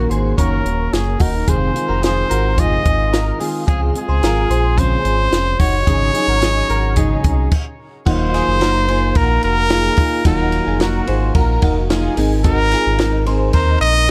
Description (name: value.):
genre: jangly indie pop.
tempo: 110 BPM.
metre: 4/4.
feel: straight.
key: unclear.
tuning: A4 = 440 Hz.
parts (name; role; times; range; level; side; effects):
clear trumpet; melody; 0.0-14.1 s; Gb4 to Eb5; -22 LUFS; equal; none.
fingerpicked plugged-in steel-string acoustic guitar; accompaniment; 0.0-14.1 s; F2 to Bb4; -25 LUFS; equal; none.
direct-recorded clean electric guitar; arpeggios; 0.0-14.1 s; Bb3 to Db5; -27 LUFS; equal; ensemble chorus.
sub bass with octave; bass; 0.0-14.1 s; Eb1 to Eb2; -21 LUFS; equal; none.
compact cocktail drum kit; drums; 0.1-13.9 s; crash cymbal, hi-hat, kick drum, ride cymbal, snare drum; -21 LUFS; equal; none.
dark studio violin section; second line; 11.4-12.3 s; Ab4 to Bb4; -29 LUFS; equal; tape echo.
room: small room reverb.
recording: dark, warm production.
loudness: -16 LUFS.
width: mono.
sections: 0.0-8.1 A section; 8.1-14.1 B section.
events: stop 7.5-8.1.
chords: 0.0 Ebm7; 1.5 Fm7; 3.7 Dbmaj7; 5.9 Ab7sus4; 8.1 Ebmadd9; 12.2 Abadd9.